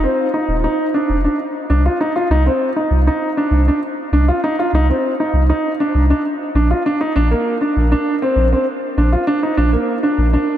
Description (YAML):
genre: piano and strings electronica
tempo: 99 BPM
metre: 4/4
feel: straight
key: C minor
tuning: A4 = 441 Hz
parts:
  - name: warm concert grand piano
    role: riff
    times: 0.0-10.6 s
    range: Bb3 to F4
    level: -16 LUFS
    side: equal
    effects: analog delay
  - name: warm sub bass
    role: bass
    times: 0.0-10.4 s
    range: Eb1 to C2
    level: -14 LUFS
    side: equal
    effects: none
room: moderate huge ambient reverb, RT60 9.3 s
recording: dreamy mix soaked in reverb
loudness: -14 LUFS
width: side -11 dB against mid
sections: 0.0-10.6 A section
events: none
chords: 0.0 F5; 1.4 Cmadd9; 6.2 Bb